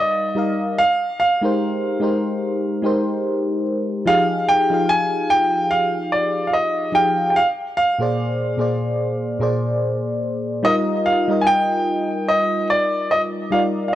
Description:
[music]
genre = R&B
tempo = 73 BPM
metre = 4/4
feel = swing 58% on 16ths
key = Eb major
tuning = A4 = 443 Hz
[part]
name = warm baby grand piano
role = melody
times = 0.0-13.9 s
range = D5 to Ab5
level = -18 LUFS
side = right 1 dB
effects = none
[part]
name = mellow FM electric piano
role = accompaniment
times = 0.0-13.9 s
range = Bb2 to F5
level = -21 LUFS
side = equal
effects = chorus
[sound]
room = light reverb, small room reverb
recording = dry, gritty hardware recording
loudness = -17 LUFS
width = side -12 dB against mid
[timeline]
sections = 0.0-13.9 A section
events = none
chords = 0.0 Ebmaj7/G; 0.8 Abmaj7; 4.1 Fm7; 7.4 Bb7; 10.6 Eb/G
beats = | 0.78 1.60 2.42 3.25 | 4.07 4.89 5.71 6.54 | 7.36 8.18 9.00 9.82 | 10.64 11.47 12.29 13.11 | 13.93

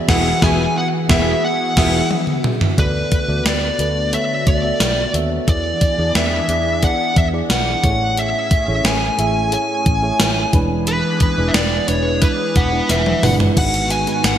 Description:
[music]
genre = 1980s-style pop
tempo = 89 BPM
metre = 4/4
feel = straight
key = unclear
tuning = A4 = 439 Hz
[part]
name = mellow FM electric piano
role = accompaniment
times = 0.0-14.4 s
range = G#2 to E5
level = -22 LUFS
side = right 1 dB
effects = chorus
[part]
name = phased analog pad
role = sustained chords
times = 0.0-14.4 s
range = D3 to B4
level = -27 LUFS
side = equal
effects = phaser, chorus
[part]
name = fuzz lead guitar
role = melody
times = 0.1-14.4 s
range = B4 to G#5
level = -20 LUFS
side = equal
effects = distortion, digital delay
[part]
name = analog synth brass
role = stabs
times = 0.1-2.0 s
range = B3 to G#4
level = -26 LUFS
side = left 1 dB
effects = chorus, digital delay
[part]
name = vintage muted fingered electric bass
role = bass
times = 0.1-14.4 s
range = E1 to E2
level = -22 LUFS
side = equal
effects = none
[part]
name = gated 80s digital drum machine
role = drums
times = 0.1-14.4 s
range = crash cymbal, hi-hat, kick drum, snare drum, tambourine, toms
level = -18 LUFS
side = equal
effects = gated reverb, gated reverb snare, overdrive
[sound]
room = moderate lush hall reverb, RT60 2.4 s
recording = bright 1980s-style digital production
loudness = -14 LUFS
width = side -10 dB against mid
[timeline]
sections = 0.0-2.8 A section; 2.8-13.6 B section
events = band accent 0.1-2.8; drum fill 2.1-2.8, 12.9-13.6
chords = 0.0 Eadd9; 2.8 D6; 5.5 E7; 7.8 Amaj7; 10.5 E7; 13.6 G#m7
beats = | 0.09 0.76 1.43 2.11 | 2.78 3.46 4.13 4.80 | 5.48 6.15 6.83 7.50 | 8.18 8.85 9.52 10.20 | 10.87 11.54 12.22 12.89 | 13.57 14.24

